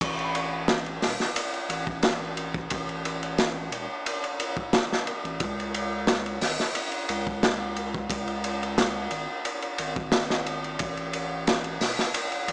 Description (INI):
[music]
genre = trip hop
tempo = 89 BPM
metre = 4/4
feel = straight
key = unclear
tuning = A4 = 439 Hz
[part]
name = round analog bass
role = bass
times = 0.0-12.5 s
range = E1 to C#2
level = -38 LUFS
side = equal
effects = none
[part]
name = crunchy breakbeat drum kit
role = drums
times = 0.0-12.5 s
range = crash cymbal, hi-hat, kick drum, ride cymbal, snare drum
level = -28 LUFS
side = equal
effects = none
[sound]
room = little or no reverb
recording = small speaker sound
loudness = -28 LUFS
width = mono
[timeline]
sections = 0.0-12.5 A section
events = none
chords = none